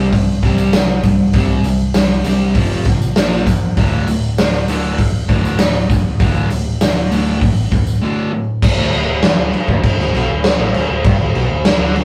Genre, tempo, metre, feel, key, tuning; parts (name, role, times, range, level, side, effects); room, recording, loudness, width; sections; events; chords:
garage rock duo or trio; 99 BPM; 4/4; straight; A4 = 440 Hz
overdriven semi-hollow guitar; riff; 0.0-12.0 s; D2 to C4; -20 LUFS; equal
hollow-body short-scale picked electric bass; bass; 0.0-12.0 s; D1 to E2; -25 LUFS; equal
raw garage drum kit; drums; 0.1-12.0 s; crash cymbal, hi-hat, kick drum, snare drum; -17 LUFS; equal
tambourine; percussion; 0.1-8.0 s; -41 LUFS; equal
light reverb; rough rehearsal-room recording, warm saturation; -15 LUFS; mono
0.0-8.6 A section; 8.6-12.0 B section
break 8.0-8.6
0.0 C5; 2.6 F5; 3.2 Bb5; 3.8 D5; 8.6 N.C.